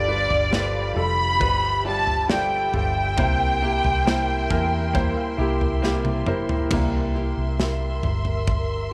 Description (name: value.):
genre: pop ballad.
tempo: 68 BPM.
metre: 4/4.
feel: straight.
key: unclear.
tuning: A4 = 440 Hz.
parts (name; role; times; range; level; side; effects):
dark studio violin section; melody; 0.0-5.8 s; D5 to B5; -25 LUFS; equal; none.
felt-muted upright piano; accompaniment; 0.0-8.9 s; G2 to Ab5; -31 LUFS; equal; none.
dark studio string section; sustained chords; 0.0-8.9 s; G4 to C6; -36 LUFS; equal; none.
flamenco guitar; arpeggios; 0.0-8.9 s; G2 to G4; -35 LUFS; equal; none.
vintage muted fingered electric bass; bass; 0.0-8.9 s; F1 to E2; -28 LUFS; equal; none.
modern studio drum kit; drums; 0.3-8.7 s; crash cymbal, kick drum, snare drum, toms; -29 LUFS; equal; none.
room: light reverb.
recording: none.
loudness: -22 LUFS.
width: mono.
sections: 0.0-6.7 A section; 6.7-8.9 B section.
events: felt piano fill 4.1-6.7; drum fill 5.8-6.7; felt piano solo 6.7-8.9.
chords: 0.0 G7; 3.2 C7.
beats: 0.53 1.42 2.30 | 3.18 4.06 4.95 5.83 | 6.71 7.59 8.47.